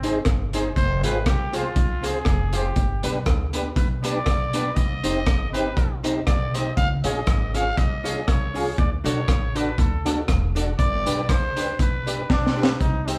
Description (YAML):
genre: ska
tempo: 120 BPM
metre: 4/4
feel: swing 54% on 8ths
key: unclear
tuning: A4 = 445 Hz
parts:
  - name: growling trumpet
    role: melody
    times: 0.0-12.8 s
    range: C4 to F5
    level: -31 LUFS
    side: equal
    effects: none
  - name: archtop guitar, miked and amplified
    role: accompaniment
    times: 0.0-13.2 s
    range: B3 to D5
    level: -34 LUFS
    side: equal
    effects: none
  - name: tonewheel organ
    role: stabs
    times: 0.0-13.2 s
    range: C4 to C5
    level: -32 LUFS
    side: equal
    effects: chorus vibrato, slow rotary speaker
  - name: upright bass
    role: bass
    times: 0.0-13.2 s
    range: E1 to D2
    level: -30 LUFS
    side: equal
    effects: none
  - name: crunchy breakbeat drum kit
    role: drums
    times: 0.0-13.2 s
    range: hi-hat, kick drum, rim click, snare drum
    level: -25 LUFS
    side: equal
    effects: none
  - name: brilliant trombone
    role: melody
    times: 12.3-13.2 s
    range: C4 to Eb4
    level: -32 LUFS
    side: equal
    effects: none
room: moderate studio reverb, RT60 0.8 s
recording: band playing live in one room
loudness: -23 LUFS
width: mono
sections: 0.0-12.8 A section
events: trumpet solo 0.0-12.8; drum fill 12.3-12.8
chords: 0.0 Ab; 0.8 Fm; 2.8 G; 4.8 Cm; 6.8 Db; 8.8 D; 10.8 G